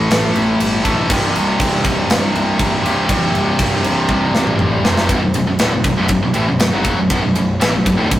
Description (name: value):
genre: heavy metal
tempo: 120 BPM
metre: 4/4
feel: straight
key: unclear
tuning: A4 = 442 Hz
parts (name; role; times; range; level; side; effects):
- fuzz guitar; riff; 0.0-8.2 s; B1 to A3; -22 LUFS; equal; distortion
- heavy high-gain guitar; riff; 0.0-8.2 s; B1 to A3; -17 LUFS; equal; distortion
- fuzz picked electric bass; bass; 0.0-8.2 s; B0 to A1; -21 LUFS; equal; overdrive
- tight metal drum kit; drums; 0.1-8.2 s; crash cymbal, kick drum, ride cymbal, snare drum, toms; -18 LUFS; equal; none
room: light reverb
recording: rough rehearsal-room recording, warm saturation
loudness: -13 LUFS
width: side -13 dB against mid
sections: 0.0-5.1 A section; 5.1-8.2 B section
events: half time 0.0-5.1; drum fill 4.1-5.1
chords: 0.0 A5; 1.1 C5; 5.1 Bm